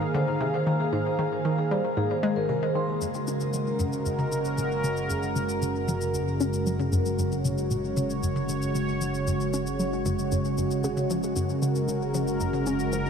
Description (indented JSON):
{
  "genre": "ambient, sequencer-driven space music",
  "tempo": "115 BPM",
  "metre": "4/4",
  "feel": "straight",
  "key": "Ab lydian, Gb major from 3.0 s",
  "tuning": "A4 = 440 Hz",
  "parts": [
    { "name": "sweeping resonant pad", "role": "sustained chords", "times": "0.0-13.1 s", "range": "Db3 to F5", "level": "-27 LUFS", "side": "right 1 dB", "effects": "chorus, shimmer reverb" },
    { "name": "vibraphone with soft mallets", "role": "arpeggios", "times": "0.0-3.0 s", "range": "Ab4 to C6", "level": "-31 LUFS", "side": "equal", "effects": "auto-pan, ping-pong delay, shimmer reverb" },
    { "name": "hollow square pluck", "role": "riff", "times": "0.0-13.1 s", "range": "Gb2 to Db4", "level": "-30 LUFS", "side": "left 1 dB", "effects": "chorus, ping-pong delay, shimmer reverb" },
    { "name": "analog drone", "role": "bass", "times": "4.6-13.1 s", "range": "Gb1", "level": "-36 LUFS", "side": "equal", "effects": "chorus" },
    { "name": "electronic shaker and toms", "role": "percussion", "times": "3.0-13.0 s", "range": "none", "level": "-36 LUFS", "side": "left 2 dB", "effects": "ping-pong delay" }
  ],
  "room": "wet huge ambient reverb, RT60 8.4 s",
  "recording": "faint mains hum",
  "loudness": "-24 LUFS",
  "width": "side -7 dB against mid",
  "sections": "0.0-3.0 A section; 3.0-13.1 B section",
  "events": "filter sweep on synth arpeggio sound 3.0-13.1",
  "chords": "0.0 Abadd9; 3.0 Gbadd9"
}